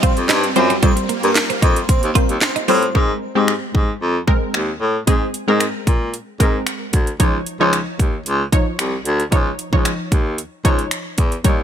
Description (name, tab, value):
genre	dance-pop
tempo	113 BPM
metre	4/4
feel	straight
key	unclear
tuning	A4 = 440 Hz
part	airy dreamy lead	melody	0.0-2.8 s	Bb4 to C5	-25 LUFS	equal	chorus, ping-pong delay
part	wide unison pluck	accompaniment	0.0-11.6 s	F3 to Db5	-22 LUFS	equal	sidechain pumping
part	supersaw chords	sustained chords	0.0-2.9 s	G3 to F4	-26 LUFS	equal	analog chorus, sidechain pumping
part	twelve-string electric guitar	riff	0.0-2.8 s	G3 to F4	-25 LUFS	right 8 dB	wide subtle chorus
part	house drum kit	drums	0.0-11.6 s	finger snaps, handclaps, hi-hat, kick drum, snare drum	-18 LUFS	equal	none
part	mellow baritone saxophone	bass	0.2-11.6 s	C2 to Bb2	-19 LUFS	equal	sidechain pumping
room	light reverb, digital ambience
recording	bright 1980s-style digital production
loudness	-15 LUFS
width	side -9 dB against mid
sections	0.0-3.0 A section; 3.0-11.6 B section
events	drop 0.0-3.0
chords	0.0 Fsus2; 3.0 Abadd9; 7.2 Dbadd9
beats	0.29 | 0.83 1.36 1.89 2.42 | 2.95 3.48 4.01 4.54 | 5.07 5.61 6.14 6.67 | 7.20 7.73 8.26 8.79 | 9.32 9.85 10.38 10.91 | 11.45